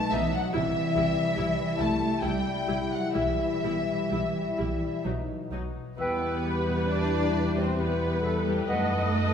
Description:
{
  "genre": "classical",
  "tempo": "62-73 BPM",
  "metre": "3/4",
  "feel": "rubato",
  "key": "E minor",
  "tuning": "A4 = 440 Hz",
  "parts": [
    { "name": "warm studio violin section", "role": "melody", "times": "0.0-9.3 s", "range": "G4 to A5", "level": "-36 LUFS", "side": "left 2 dB", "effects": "none" },
    { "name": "warm studio violin section", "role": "second line", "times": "0.0-9.3 s", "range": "G4 to A5", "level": "-33 LUFS", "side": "left 3 dB", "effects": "none" },
    { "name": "warm French horn section", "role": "sustained chords", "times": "0.0-9.3 s", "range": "F#3 to E4", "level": "-32 LUFS", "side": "left 4 dB", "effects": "none" },
    { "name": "concert harp", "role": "arpeggios", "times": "0.0-9.3 s", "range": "E2 to E5", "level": "-35 LUFS", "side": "left 4 dB", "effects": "none" },
    { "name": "warm studio cello section", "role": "bass", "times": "0.0-9.3 s", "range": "E3 to D4", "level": "-32 LUFS", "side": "right 3 dB", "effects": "none" },
    { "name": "warm studio viola section", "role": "accompaniment", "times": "0.1-9.3 s", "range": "F#3 to D#5", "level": "-33 LUFS", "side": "equal", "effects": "none" },
    { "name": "warm studio double bass section", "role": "bass", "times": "0.1-9.3 s", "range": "B1 to F#2", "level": "-32 LUFS", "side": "right 1 dB", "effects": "none" },
    { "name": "clear clarinet", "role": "second line", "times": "6.0-9.0 s", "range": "B4", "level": "-35 LUFS", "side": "right 2 dB", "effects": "none" },
    { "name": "silver concert flute", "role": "second line", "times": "6.0-9.1 s", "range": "F#5 to G5", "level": "-34 LUFS", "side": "equal", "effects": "none" },
    { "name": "warm oboe", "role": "second line", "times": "6.0-9.0 s", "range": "D#5 to E5", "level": "-36 LUFS", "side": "equal", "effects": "none" }
  ],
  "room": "wet scoring stage reverb, RT60 1.8 s",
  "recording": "minimal, uncompressed stereo recording",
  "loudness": "-25 LUFS",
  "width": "side -8 dB against mid",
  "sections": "0.0-6.0 A section; 6.0-9.3 B section",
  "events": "none",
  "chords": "0.0 B7; 0.5 C; 3.2 Em/B; 5.1 B; 6.0 Em; 8.7 B7/F#",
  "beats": "| 0.54 1.37 2.23 | 3.16 4.13 5.06 | 6.00 6.91 7.80 | 8.69"
}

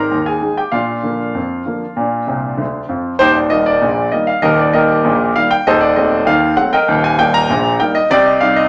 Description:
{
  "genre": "ragtime piano",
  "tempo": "98 BPM",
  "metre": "2/4",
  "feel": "straight",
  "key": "Eb major",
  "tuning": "A4 = 440 Hz",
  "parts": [
    { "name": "warm concert grand piano", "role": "solo", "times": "0.0-8.7 s", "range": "Eb1 to C6", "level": "-14 LUFS", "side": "equal", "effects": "none" }
  ],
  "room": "moderate large studio reverb, RT60 0.9 s",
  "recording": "none",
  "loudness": "-15 LUFS",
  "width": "mono",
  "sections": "0.0-3.2 A section; 3.2-8.7 B section",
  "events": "grand piano fill 2.3-3.2",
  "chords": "0.0 Ab; 0.7 Bb; 3.2 Eb; 5.7 Ebdim7; 6.9 Eb; 8.1 Cm",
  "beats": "0.13 | 0.75 1.37 | 1.99 2.60 | 3.22 3.83 | 4.45 5.06 | 5.67 6.28 | 6.89 7.50 | 8.11"
}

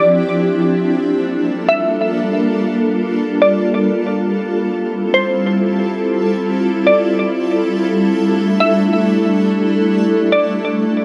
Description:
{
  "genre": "hip hop",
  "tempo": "free time",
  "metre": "none",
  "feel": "none",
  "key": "unclear",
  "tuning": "A4 = 442 Hz",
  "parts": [
    { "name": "glassy wavetable pluck", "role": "melody", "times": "0.0-10.7 s", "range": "C5 to E5", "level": "-20 LUFS", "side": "equal", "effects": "chorus, low-pass filter, digital delay" },
    { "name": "granular cloud pad", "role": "sustained chords", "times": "0.0-11.0 s", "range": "F3 to A4", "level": "-17 LUFS", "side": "equal", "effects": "built-in reverb" }
  ],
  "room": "moderate lush hall reverb, RT60 2.9 s",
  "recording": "none",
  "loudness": "-16 LUFS",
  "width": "mono",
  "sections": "0.0-11.0 A section",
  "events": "none",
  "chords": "0.0 Dm11; 0.8 Gm9; 4.3 Fmaj9; 7.7 A7sus4",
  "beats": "free time"
}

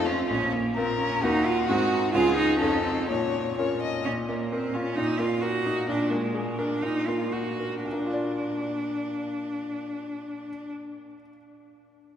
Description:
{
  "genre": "quick classical-period movement for piano trio",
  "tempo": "112-134 BPM",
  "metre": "2/4",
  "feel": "rubato",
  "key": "unclear",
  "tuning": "A4 = 441 Hz",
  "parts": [
    { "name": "rich violin", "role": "melody", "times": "0.0-4.1 s", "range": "F4 to Eb5", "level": "-31 LUFS", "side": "left 6 dB", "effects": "none" },
    { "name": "bright grand piano", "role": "accompaniment", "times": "0.0-11.4 s", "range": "Bb1 to D5", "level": "-29 LUFS", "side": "left 1 dB", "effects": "none" },
    { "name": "clear cello", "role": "second line", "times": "0.1-10.7 s", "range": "Ab3 to Gb4", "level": "-27 LUFS", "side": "right 2 dB", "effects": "none" }
  ],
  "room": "wet cathedral reverb, RT60 5.4 s",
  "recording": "recorded in a church or concert hall",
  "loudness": "-24 LUFS",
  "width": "side -9 dB against mid",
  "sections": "0.0-4.1 A section; 4.1-7.9 B section; 7.9-9.9 C section",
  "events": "slowing down 5.4-7.9",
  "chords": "0.3 Bb5; 1.2 Ebm; 1.7 Ab7; 2.1 Db; 2.6 F7; 3.1 Bbm; 4.1 Bb5; 5.0 Ebm/Bb; 5.9 Bb7; 6.8 Ebmadd9/Bb; 7.9 Bb",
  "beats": "| 0.29 0.76 | 1.23 1.69 | 2.14 2.61 | 3.09 3.58 | 4.06 4.52 | 4.98 5.43 | 5.89 6.35 | 6.83 7.33 | 7.85 8.38 | 8.90 9.42"
}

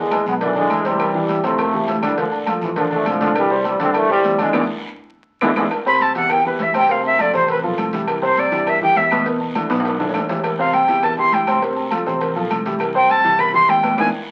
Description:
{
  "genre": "latin, salsa",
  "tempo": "203 BPM",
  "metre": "4/4",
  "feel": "straight",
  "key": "unclear",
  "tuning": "A4 = 440 Hz",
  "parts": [
    { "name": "warm trombone section", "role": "melody", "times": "0.0-5.6 s", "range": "B2 to C4", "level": "-22 LUFS", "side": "equal", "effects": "none" },
    { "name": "warm baby grand piano", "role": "accompaniment", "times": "0.0-14.1 s", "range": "B2 to D5", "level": "-24 LUFS", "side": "equal", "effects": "none" },
    { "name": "sustaining fretless electric bass", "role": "bass", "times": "0.0-14.1 s", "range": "A1 to A2", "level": "-33 LUFS", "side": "equal", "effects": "none" },
    { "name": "agogo bells and timbales", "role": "percussion", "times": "0.1-14.1 s", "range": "none", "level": "-29 LUFS", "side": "equal", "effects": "none" },
    { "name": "claves", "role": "percussion", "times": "0.1-14.1 s", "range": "none", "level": "-35 LUFS", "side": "equal", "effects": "none" },
    { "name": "congas", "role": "percussion", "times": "0.1-14.1 s", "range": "none", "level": "-32 LUFS", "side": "equal", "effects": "none" },
    { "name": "cowbell and bongos", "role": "percussion", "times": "0.1-14.1 s", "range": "none", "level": "-29 LUFS", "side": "equal", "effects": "none" },
    { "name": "guiro", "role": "percussion", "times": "0.1-14.1 s", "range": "none", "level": "-40 LUFS", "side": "equal", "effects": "none" },
    { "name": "breathy bright jazz flute", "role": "melody", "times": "5.9-14.1 s", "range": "B4 to C6", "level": "-18 LUFS", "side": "equal", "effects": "none" }
  ],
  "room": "wet club reverb, RT60 0.8 s",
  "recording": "very old 78 rpm record, vinyl crackle",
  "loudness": "-18 LUFS",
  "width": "mono",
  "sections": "0.0-5.7 A section; 5.7-14.3 B section",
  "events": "band accent 4.5-5.7, 14.0-14.3; flute solo 5.7-14.3; drum fill 9.7-10.4",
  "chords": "0.0 E7; 1.0 Am7; 2.2 Dm7; 3.4 Cadd9; 4.5 E7(no3); 5.7 D13sus4; 6.9 Dm7; 8.1 Cadd9; 9.3 E5; 10.4 Am7; 11.6 Dm7; 12.8 C",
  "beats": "0.11 0.41 0.70 | 1.00 1.29 1.59 1.88 | 2.18 2.47 2.77 3.06 | 3.36 3.65 3.95 4.24 | 4.54 4.83 5.13 5.42 | 5.72 6.01 6.31 6.60 | 6.90 7.19 7.49 7.78 | 8.08 8.37 8.67 8.96 | 9.26 9.55 9.85 10.14 | 10.44 10.73 11.03 11.32 | 11.62 11.92 12.21 12.51 | 12.80 13.10 13.39 13.69 | 13.98"
}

